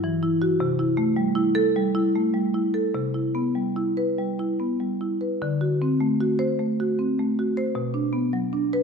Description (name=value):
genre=classical, contemporary piece for solo marimba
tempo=101 BPM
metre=4/4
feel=uneven beats, rubato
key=unclear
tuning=A4 = 440 Hz
part: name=marimba with medium hard mallets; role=solo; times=0.0-8.8 s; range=G2 to C5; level=-21 LUFS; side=equal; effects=none
room=moderate scoring stage reverb, RT60 1.5 s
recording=none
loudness=-21 LUFS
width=side -5 dB against mid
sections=0.0-8.8 A section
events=none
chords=0.0 Emadd9/G; 0.6 C6; 2.9 Cmaj7; 5.4 D7; 7.8 Bm